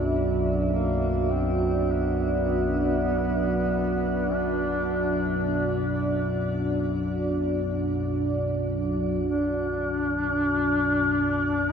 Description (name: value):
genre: dark ambient drone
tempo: free time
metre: none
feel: none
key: unclear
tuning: A4 = 435 Hz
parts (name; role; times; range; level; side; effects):
- deep dark ambient pad; sustained chords; 0.0-11.7 s; D4 to F#5; -26 LUFS; right 2 dB; chorus, built-in reverb, shimmer reverb
- analog drone; drone; 0.0-11.7 s; B1 to F#2; -28 LUFS; left 1 dB; chorus
- bronze singing bowl; texture; 0.0-9.3 s; B5; -57 LUFS; left 1 dB; none
- mellow duduk; melody; 0.7-11.7 s; A#3 to D4; -29 LUFS; left 2 dB; shimmer reverb, ping-pong delay
room: wet huge ambient reverb, RT60 7.5 s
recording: dreamy mix soaked in reverb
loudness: -23 LUFS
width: side -7 dB against mid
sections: 0.0-9.2 A section; 9.2-11.7 B section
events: none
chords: 0.0 Bm